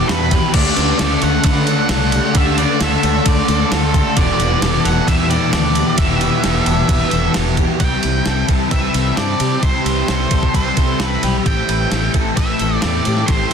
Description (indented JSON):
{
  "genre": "rock, shoegaze and dream pop",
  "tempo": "132 BPM",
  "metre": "4/4",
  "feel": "straight",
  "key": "unclear",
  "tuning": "A4 = 440 Hz",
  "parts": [
    { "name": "octave-fuzz lead guitar", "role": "melody", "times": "0.0-13.5 s", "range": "A4 to G5", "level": "-22 LUFS", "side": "right 1 dB", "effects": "distortion, slapback echo" },
    { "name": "deep dark ambient pad", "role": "sustained chords", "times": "0.0-13.5 s", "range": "C4 to F#6", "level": "-27 LUFS", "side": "equal", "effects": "chorus, built-in reverb" },
    { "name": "picked twelve-string acoustic guitar", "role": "arpeggios", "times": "0.0-13.5 s", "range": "G4 to B4", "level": "-26 LUFS", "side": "left 2 dB", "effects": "ensemble chorus, slapback echo" },
    { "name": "overdriven electric guitar", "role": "riff", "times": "0.0-13.5 s", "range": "E2 to G4", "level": "-23 LUFS", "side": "right 13 dB", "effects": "reverse reverb" },
    { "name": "overdriven semi-hollow guitar", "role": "riff", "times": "0.0-7.8 s", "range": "E2 to D4", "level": "-22 LUFS", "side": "equal", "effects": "none" },
    { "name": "thick fuzz guitar", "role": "riff", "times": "0.0-13.5 s", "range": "E2 to D4", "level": "-22 LUFS", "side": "left 12 dB", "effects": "distortion, lush chorus" },
    { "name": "fingered electric bass", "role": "bass", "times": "0.1-13.4 s", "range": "E1 to D3", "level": "-20 LUFS", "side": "equal", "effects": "none" },
    { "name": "crisp 8-bit digital drum machine", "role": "drums", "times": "0.1-13.5 s", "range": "crash cymbal, kick drum, ride cymbal, snare drum", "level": "-19 LUFS", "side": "equal", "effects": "none" }
  ],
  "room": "digital ambience",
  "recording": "dense, heavily limited modern master",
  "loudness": "-13 LUFS",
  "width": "side -6 dB against mid",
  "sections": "0.0-7.8 A section; 7.8-13.5 B section",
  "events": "none",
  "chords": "0.0 Em; 0.5 D; 4.2 Em7; 7.8 Cmaj7; 11.5 Am7"
}